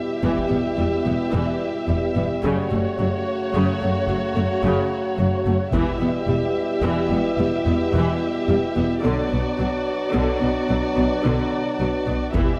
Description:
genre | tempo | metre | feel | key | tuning
cinematic, epic orchestral film score | 73 BPM (dotted quarters) | 12/8 | straight | E minor | A4 = 444 Hz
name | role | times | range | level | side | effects
dark symphonic violin section | melody | 0.0-12.6 s | C#5 to E5 | -33 LUFS | equal | none
dark symphonic violin section | second line | 0.0-12.6 s | F#4 to G4 | -33 LUFS | equal | none
clear trombone section | sustained chords | 0.0-12.6 s | B2 to G3 | -30 LUFS | equal | none
dark French horn section | sustained chords | 0.0-12.6 s | A3 to F#4 | -29 LUFS | equal | none
warm studio viola section | accompaniment | 0.2-12.6 s | C#3 to B3 | -29 LUFS | equal | none
rich symphonic cello section | bass | 0.2-12.4 s | E2 to B2 | -28 LUFS | equal | none
rich symphonic double bass section | bass | 0.2-12.4 s | E1 to B1 | -29 LUFS | equal | none
taiko ensemble | drums | 0.4-0.6, 5.7-6.8, 12.3-12.6 s | none | -29 LUFS | equal | none
room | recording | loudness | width
light reverb | close, detailed microphones | -22 LUFS | mono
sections
0.0-12.6 A section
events
build-up 0.0-12.6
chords
0.0 Em; 2.4 F#m; 5.7 Em; 9.0 Bm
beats
0.79 1.62 | 2.44 3.27 4.09 4.91 | 5.74 6.56 7.39 8.21 | 9.04 9.86 10.69 11.52 | 12.35

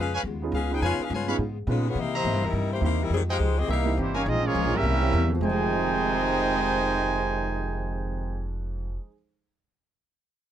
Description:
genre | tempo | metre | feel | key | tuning
jazz, big band swing | 209 BPM | 4/4 | swing 61% on 8ths | F minor | A4 = 441 Hz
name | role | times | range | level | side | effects
warm saxophone section | melody | 0.0-4.0 s | Eb3 to Ab5 | -28 LUFS | left 5 dB | none
picked steel-string acoustic guitar | accompaniment | 0.0-9.1 s | Bb2 to G4 | -35 LUFS | left 7 dB | none
upright bass | bass | 0.0-9.0 s | F1 to C3 | -28 LUFS | equal | none
clear trumpet section | stabs | 0.1-4.2 s | Ab4 to Cb6 | -29 LUFS | equal | none
warm grand piano | accompaniment | 0.4-9.1 s | F2 to Cb5 | -33 LUFS | right 5 dB | none
warm trombone section | second line | 3.7-8.5 s | F2 to E4 | -30 LUFS | right 4 dB | none
clear trumpet section | melody | 4.0-8.5 s | Bb3 to Ab5 | -26 LUFS | right 1 dB | none
room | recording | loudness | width
light reverb | dry, close 1970s-style studio recording | -23 LUFS | side -10 dB against mid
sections
0.0-4.3 A section; 4.3-5.4 B section; 5.4-7.7 C section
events
none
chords
0.0 Db7; 2.0 C7#9; 3.1 Fm9; 3.7 C7#9; 4.3 Bbm7; 4.8 C7b9; 5.4 Fm9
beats
0.24 0.53 | 0.81 1.10 1.39 1.67 | 1.96 2.25 2.54 2.82 | 3.11 3.40 3.69 3.97 | 4.26 4.55 4.83 5.12 | 5.41 5.70 5.98 6.27 | 6.55 6.84 7.13 7.42

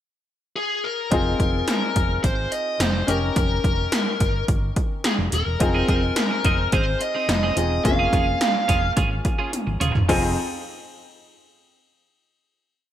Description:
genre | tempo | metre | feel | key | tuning
1980s-style pop | 107 BPM | 4/4 | straight | F minor | A4 = 440 Hz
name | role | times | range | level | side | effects
bluesy overdriven lead guitar | melody | 0.6-8.9 s | Ab4 to F5 | -25 LUFS | left 1 dB | distortion, digital delay
clear grand piano | accompaniment | 1.1-10.3 s | F2 to Bb4 | -27 LUFS | left 2 dB | none
hollow-body short-scale fingered electric bass | bass | 1.1-10.4 s | Eb1 to Ab1 | -25 LUFS | equal | none
80s electronic pad drums | drums | 1.1-10.2 s | crash cymbal, hi-hat, kick drum, snare drum, toms | -23 LUFS | equal | gated reverb on snare and toms, overdrive, gated reverb
twelve-string electric guitar | riff | 5.6-10.3 s | C4 to Ab4 | -28 LUFS | right 4 dB | wide subtle chorus, digital delay
room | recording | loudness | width
light reverb, digital ambience | bright 1980s-style digital production | -19 LUFS | side -11 dB against mid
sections
0.0-1.1 pickup bar; 1.1-10.1 verse; 10.1-12.3 final chord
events
drum fill 9.5-10.1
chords
0.0 N.C.; 1.1 Fm7; 3.1 Eb7/F; 5.6 Fm7; 7.8 Bbm7/F; 10.1 Fm7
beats
0.00 0.56 | 1.12 1.68 2.24 2.80 | 3.36 3.92 4.48 5.04 | 5.61 6.17 6.73 7.29 | 7.85 8.41 8.97 9.53 | 10.09

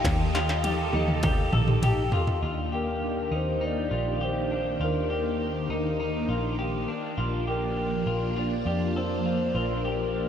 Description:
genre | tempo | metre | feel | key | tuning
dream pop | 101 BPM | 4/4 | straight | Eb lydian | A4 = 440 Hz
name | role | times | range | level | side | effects
hollow clarinet-like synth lead | melody | 0.0-10.3 s | Bb4 to G5 | -32 LUFS | left 1 dB | chorus, analog delay
phased string machine | sustained chords | 0.0-10.3 s | Eb3 to A4 | -30 LUFS | right 1 dB | ensemble chorus, phaser
clean electric guitar | arpeggios | 0.0-10.3 s | D4 to A4 | -32 LUFS | left 2 dB | lush chorus, analog delay
vintage muted picked electric bass | bass | 0.0-10.3 s | Bb1 to F2 | -30 LUFS | equal | none
industrial drum kit | drums | 0.0-2.4 s | kick drum, ride cymbal, snare drum, toms | -26 LUFS | equal | distortion
room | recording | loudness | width
wet huge ambient reverb, RT60 7.0 s | dreamy mix soaked in reverb | -24 LUFS | side -8 dB against mid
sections
0.0-2.4 A section; 2.4-10.3 B section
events
drum fill 0.1-2.4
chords
0.0 Eb; 2.4 Ebmaj7; 7.2 Bb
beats
| 0.05 0.64 1.24 1.83 | 2.43 3.02 3.61 4.21 | 4.80 5.40 5.99 6.58 | 7.18 7.77 8.37 8.96 | 9.55 10.15

